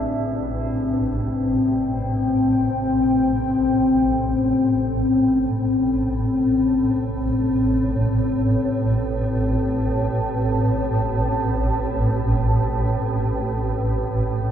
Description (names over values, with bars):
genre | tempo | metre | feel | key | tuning
dark ambient drone | free time | none | none | A minor | A4 = 442 Hz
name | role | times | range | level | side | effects
deep dark ambient pad | sustained chords | 0.0-14.5 s | C4 to A5 | -21 LUFS | left 2 dB | chorus, built-in reverb
tubular bells | arpeggios | 0.0-0.6 s | D4 | -43 LUFS | right 2 dB | diffuse ambient delay
swarming drone | drone | 0.0-14.5 s | A1 to A2 | -22 LUFS | right 1 dB | built-in reverb
room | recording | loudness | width
moderate huge ambient reverb, RT60 8.4 s | none | -18 LUFS | side -9 dB against mid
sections
0.0-14.5 A section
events
filter sweep on synth drone 0.0-14.5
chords
0.0 Am7; 13.6 N.C.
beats
free time